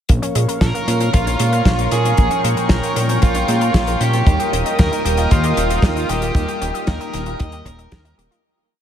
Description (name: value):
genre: italo disco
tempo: 115 BPM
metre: 4/4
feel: straight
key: Bb dorian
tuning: A4 = 440 Hz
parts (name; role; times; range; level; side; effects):
- warm analog pad; sustained chords; 0.1-8.4 s; Bb4 to Eb6; -24 LUFS; right 1 dB; chorus
- analog pluck; arpeggios; 0.1-8.4 s; F3 to Eb5; -28 LUFS; right 3 dB; chorus, vintage 12-bit sampler grit, ping-pong delay
- mellow synth brass; stabs; 0.1-8.4 s; Bb2 to Bb4; -26 LUFS; left 2 dB; chorus, phaser
- fat analog bass; bass; 0.1-8.3 s; Eb1 to Bb2; -20 LUFS; equal; tube saturation
- damped 70s drum kit; drums; 0.1-8.4 s; hi-hat, snare drum; -24 LUFS; left 1 dB; none
- kick drum; drums; 0.1-8.0 s; none; -16 LUFS; equal; none
- smooth overdriven lead guitar; melody; 0.6-8.1 s; F4 to Eb5; -22 LUFS; right 1 dB; ping-pong delay
room: moderate huge ambient reverb, RT60 7.6 s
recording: dreamy mix soaked in reverb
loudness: -15 LUFS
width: side -9 dB against mid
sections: 0.1-8.4 verse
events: filter sweep on analog polysynth 0.1-8.4; fade-out 5.7-8.4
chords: 0.1 Bbm; 4.3 Eb